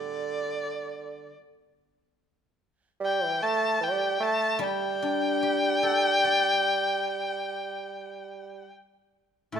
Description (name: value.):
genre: chinese traditional, Chinese chamber ensemble.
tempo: 74 BPM.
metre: 4/4.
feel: straight.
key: unclear.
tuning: A4 = 439 Hz.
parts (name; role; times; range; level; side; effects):
clear erhu; melody; 0.0-9.6 s; D5 to A5; -27 LUFS; left 2 dB; none.
warm bassoon; second line; 0.0-9.6 s; D3 to A3; -29 LUFS; right 4 dB; none.
guzheng; accompaniment; 0.0-9.6 s; A2 to D5; -33 LUFS; left 6 dB; none.
room: moderate recital hall reverb, RT60 1.5 s.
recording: minimal, uncompressed stereo recording.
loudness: -24 LUFS.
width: side -8 dB against mid.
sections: 0.0-9.6 A section.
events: none.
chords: none.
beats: 0.60 1.41 2.21 | 3.01 3.81 4.62 5.43 | 6.24 7.05 7.88 8.72 | 9.55.